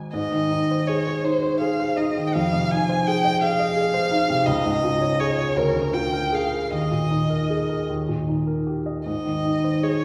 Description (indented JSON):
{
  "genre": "classical, romantic duo for violin and grand piano",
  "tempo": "50-58 BPM (dotted quarters)",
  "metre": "6/8",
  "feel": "rubato",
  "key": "Ab major",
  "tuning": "A4 = 438 Hz",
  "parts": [
    { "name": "warm baby grand piano", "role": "accompaniment", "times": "0.0-10.0 s", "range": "Db2 to Eb5", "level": "-25 LUFS", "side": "equal", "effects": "none" },
    { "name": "warm violin", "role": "melody", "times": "0.1-10.0 s", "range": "Bb4 to Ab5", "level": "-26 LUFS", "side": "equal", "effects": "none" }
  ],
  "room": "wet recital hall reverb, RT60 1.8 s",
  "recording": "recorded in a church or concert hall",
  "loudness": "-23 LUFS",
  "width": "mono",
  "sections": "0.1-10.0 A section",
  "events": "none",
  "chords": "0.1 Ab; 2.3 Fm7; 4.5 Db; 5.6 Bb7/D; 6.7 Ebsus4; 7.9 Eb; 9.1 Ab"
}